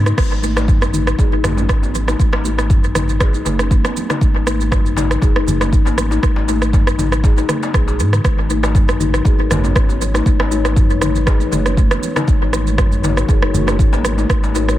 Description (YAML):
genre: afro house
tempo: 119 BPM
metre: 4/4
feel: swing 54% on 16ths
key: unclear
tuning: A4 = 440 Hz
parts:
  - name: dark analog pad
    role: sustained chords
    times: 0.0-0.2, 9.1-14.8 s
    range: E3 to C#5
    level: -27 LUFS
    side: left 1 dB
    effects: chorus, phaser, sidechain pumping
  - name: warm sub bass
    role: bass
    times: 0.0-14.8 s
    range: F#1 to G#2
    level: -19 LUFS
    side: equal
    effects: sidechain pumping
  - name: kalimba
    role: arpeggios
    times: 0.1-14.7 s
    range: D#3 to G#4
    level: -22 LUFS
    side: left 5 dB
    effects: sidechain pumping, low-pass filter, analog delay
  - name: afro-pop drum kit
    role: drums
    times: 0.1-14.8 s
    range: crash cymbal, rim click, shaker, toms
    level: -21 LUFS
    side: right 2 dB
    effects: small room ambience, dub echo
  - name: electronic kick drum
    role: drums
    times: 0.2-14.4 s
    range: none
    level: -14 LUFS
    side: equal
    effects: small room ambience
  - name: congas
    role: percussion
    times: 0.2-14.8 s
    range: none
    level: -27 LUFS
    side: right 4 dB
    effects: dub echo
  - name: darbuka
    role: percussion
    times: 0.3-14.7 s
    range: none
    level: -26 LUFS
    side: left 2 dB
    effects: none
room: light reverb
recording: echo-heavy mix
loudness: -13 LUFS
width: side -14 dB against mid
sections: 0.2-14.8 A section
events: break 0.0; filter sweep on kalimba 0.2-14.8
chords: 0.2 N.C.; 2.2 C#sus2/G# (rootless); 4.2 F#sus2/G#; 6.2 G#sus2; 8.2 Bmaj9/G#; 10.3 C#m9/G#; 12.3 F#9/G#